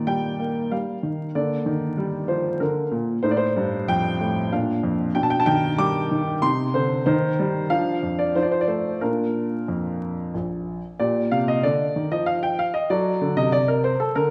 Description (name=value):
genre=classical-period piano sonatina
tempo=94 BPM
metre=3/4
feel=straight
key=Bb major, G minor from 11.0 s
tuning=A4 = 440 Hz
part: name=warm baby grand piano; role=solo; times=0.0-14.3 s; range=Bb1 to D6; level=-23 LUFS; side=equal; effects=none
room=wet recital hall reverb, RT60 1.7 s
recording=vinyl crackle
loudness=-23 LUFS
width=mono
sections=0.0-11.0 A section; 11.0-14.3 B section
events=none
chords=0.0 Bb; 1.3 Bb/D; 3.2 F7; 4.5 Bb; 5.1 G/B; 6.4 Cm; 7.1 Cm/Eb; 7.7 Dm/F; 8.4 F7; 9.0 Bb; 11.0 Gm/Bb; 12.9 D